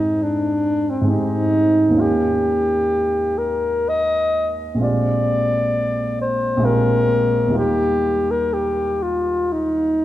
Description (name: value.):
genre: classical, impressionist duo for alto saxophone and grand piano.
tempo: 56-69 BPM.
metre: 3/4.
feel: rubato.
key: unclear.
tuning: A4 = 445 Hz.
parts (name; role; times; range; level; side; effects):
mellow alto saxophone; melody; 0.0-10.0 s; C4 to Eb5; -18 LUFS; left 1 dB; none.
dark baby grand piano; accompaniment; 0.0-10.0 s; Bb1 to G4; -21 LUFS; right 1 dB; none.
room: wet concert hall reverb, RT60 2.2 s.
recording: dark, warm production.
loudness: -17 LUFS.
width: side -14 dB against mid.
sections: 0.0-10.0 A section.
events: none.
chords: 0.0 Abmaj7; 2.0 Eb9; 4.8 Bb13; 7.6 Ebadd9.